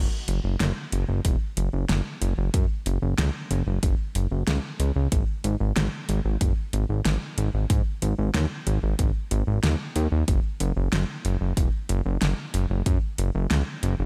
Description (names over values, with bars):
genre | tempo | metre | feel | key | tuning
synthwave | 93 BPM | 4/4 | straight | unclear | A4 = 440 Hz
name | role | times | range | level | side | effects
fat analog bass | bass | 0.0-14.1 s | E1 to G#2 | -26 LUFS | equal | sidechain pumping
pop drum kit | drums | 0.3-14.0 s | hi-hat, snare drum | -32 LUFS | equal | none
electronic kick drum | drums | 1.2-13.0 s | none | -26 LUFS | equal | none
room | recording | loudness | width
light reverb, digital ambience | none | -25 LUFS | mono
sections
0.0-14.1 A section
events
none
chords
none